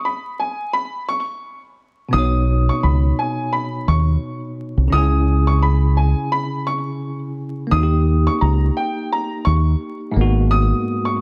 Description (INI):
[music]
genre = hip hop, boom-bap hip-hop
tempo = 86 BPM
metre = 4/4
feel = swing 57% on 16ths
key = unclear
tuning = A4 = 440 Hz
[part]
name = warm upright piano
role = melody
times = 0.0-11.2 s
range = G5 to D#6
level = -25 LUFS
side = equal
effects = high-pass filter, low-pass filter, slapback echo
[part]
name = bell-like tine electric piano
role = accompaniment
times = 2.1-11.2 s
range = G#2 to G#5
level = -25 LUFS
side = equal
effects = cassette tape, high-pass filter, low-pass filter
[part]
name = deep dub fingered electric bass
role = bass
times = 2.1-10.7 s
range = G#1 to D#2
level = -18 LUFS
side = equal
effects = none
[sound]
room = small room ambience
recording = dark, warm production, vinyl crackle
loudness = -19 LUFS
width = mono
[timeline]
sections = 0.0-11.2 A section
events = break 0.0-2.1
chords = 0.0 N.C.; 2.1 Badd9; 4.9 C#m; 7.7 D#; 10.2 G#m7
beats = 0.04 0.74 1.44 | 2.14 2.83 3.53 4.23 | 4.93 5.62 6.32 7.02 | 7.72 8.42 9.11 9.81 | 10.51 11.21